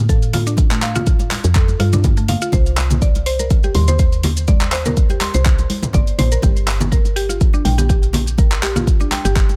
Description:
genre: afro house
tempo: 123 BPM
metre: 4/4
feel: swing 54% on 16ths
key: unclear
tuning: A4 = 440 Hz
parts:
  - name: woody FM bass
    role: bass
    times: 0.0-9.6 s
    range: G1 to A2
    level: -21 LUFS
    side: equal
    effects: sidechain pumping
  - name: mallet-like synth pluck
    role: arpeggios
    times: 0.1-9.4 s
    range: A3 to C6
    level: -26 LUFS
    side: equal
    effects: chorus, sidechain pumping, dub echo
  - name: deep house drum kit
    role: drums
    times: 0.1-9.6 s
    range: handclaps, hi-hat, shaker, toms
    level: -25 LUFS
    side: equal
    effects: none
  - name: electronic kick drum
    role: drums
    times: 0.1-9.5 s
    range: none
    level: -17 LUFS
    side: equal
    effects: none
  - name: congas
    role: percussion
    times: 0.3-9.6 s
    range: none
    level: -26 LUFS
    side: equal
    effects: none
room: little or no reverb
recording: none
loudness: -16 LUFS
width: mono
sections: 0.0-9.6 A section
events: none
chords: 0.0 F; 2.5 Cm7; 6.4 Gm

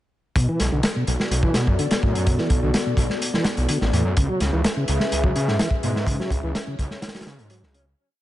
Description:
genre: breakbeat, breaks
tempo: 126 BPM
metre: 4/4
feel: straight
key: B dorian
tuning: A4 = 440 Hz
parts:
  - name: dark analog pad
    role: sustained chords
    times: 0.8-8.0 s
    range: B3 to E5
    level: -29 LUFS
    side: left 1 dB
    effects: chorus, sidechain pumping
  - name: tonewheel organ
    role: riff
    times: 0.4-7.9 s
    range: A2 to C#4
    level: -27 LUFS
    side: equal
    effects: chorus vibrato, slow rotary speaker, overdrive, dub echo
  - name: detuned saw bass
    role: bass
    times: 0.4-7.9 s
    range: A1 to C#3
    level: -23 LUFS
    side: equal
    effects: none
  - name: crunchy breakbeat drum kit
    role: drums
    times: 0.4-7.9 s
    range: hi-hat, kick drum, snare drum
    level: -23 LUFS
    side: equal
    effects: dub echo
room: light reverb, studio reverb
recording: echo-heavy mix, nothing above 11.0 kHz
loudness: -19 LUFS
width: side -14 dB against mid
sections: 0.4-8.0 drop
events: drop 0.4-8.0; fade-out 5.4-8.0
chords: 0.4 Bm7; 4.2 C#m7

